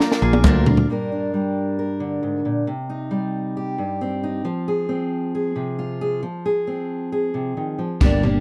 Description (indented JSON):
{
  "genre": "indie folk with a building arrangement",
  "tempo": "135 BPM",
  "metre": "4/4",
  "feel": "straight",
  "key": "unclear",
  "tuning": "A4 = 439 Hz",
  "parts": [
    { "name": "celesta", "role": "melody", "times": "0.0-0.6 s", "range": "D6", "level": "-41 LUFS", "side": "equal", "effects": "none" },
    { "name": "picked steel-string acoustic guitar", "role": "accompaniment", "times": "0.0-0.9, 8.0-8.4 s", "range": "G2 to G4", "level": "-25 LUFS", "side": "equal", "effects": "none" },
    { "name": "hand-pumped harmonium", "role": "sustained chords", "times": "0.0-0.9 s", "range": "F4 to Bb5", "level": "-33 LUFS", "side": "equal", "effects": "none" },
    { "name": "bowl-back mandolin", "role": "arpeggios", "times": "0.0-0.9 s", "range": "Ab4 to Bb4", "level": "-32 LUFS", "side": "equal", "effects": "none" },
    { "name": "compact cocktail drum kit", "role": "drums", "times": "0.0-0.9, 8.0-8.3 s", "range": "crash cymbal, kick drum, snare drum, toms", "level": "-20 LUFS", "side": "equal", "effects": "none" },
    { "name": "picked electric bass", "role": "bass", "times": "0.2-0.9, 8.0-8.4 s", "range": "G1 to D2", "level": "-22 LUFS", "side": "equal", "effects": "none" },
    { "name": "group handclap", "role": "percussion", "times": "0.4-0.6 s", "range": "none", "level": "-33 LUFS", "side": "equal", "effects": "none" },
    { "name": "fingerpicked steel-string acoustic guitar", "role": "accompaniment", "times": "0.9-8.4 s", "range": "G2 to Bb4", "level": "-25 LUFS", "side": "equal", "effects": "none" }
  ],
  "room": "small room ambience",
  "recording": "dry, close 1970s-style studio recording",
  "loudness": "-22 LUFS",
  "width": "mono",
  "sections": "0.9-8.0 A section",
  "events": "drum fill 0.0-0.9, 8.0-8.4",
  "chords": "0.0 Bb; 0.9 Gm; 2.7 Cm; 4.5 Fm",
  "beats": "0.00 0.45 | 0.89 1.33 1.78 2.22 | 2.67 3.12 3.56 4.01 | 4.45 4.90 5.34 5.79 | 6.23 6.68 7.12 7.57 | 8.02"
}